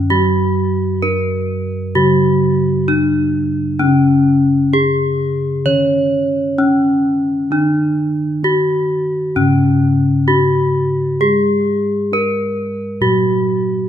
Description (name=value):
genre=Javanese gamelan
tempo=65 BPM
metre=4/4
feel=straight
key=C# pelog barang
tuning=A4 = 440 Hz
part: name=gamelan-type bronze metallophone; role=melody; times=0.0-13.9 s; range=C#4 to C#5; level=-15 LUFS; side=left 1 dB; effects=none
part: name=gamelan-type bronze metallophone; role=accompaniment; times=0.0-13.9 s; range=C#3 to C#4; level=-19 LUFS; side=right 2 dB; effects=none
part: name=gamelan-type bossed gongs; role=bass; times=0.0-13.9 s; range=F#2+30c to G#4-40c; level=-21 LUFS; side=left 1 dB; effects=none
room=moderate scoring stage reverb, RT60 2.0 s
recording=minimal, uncompressed stereo recording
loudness=-13 LUFS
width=side -10 dB against mid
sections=0.0-13.9 A section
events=none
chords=none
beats=| 0.10 1.02 1.95 2.88 | 3.80 4.73 5.66 6.58 | 7.51 8.43 9.36 10.29 | 11.21 12.13 13.02 13.88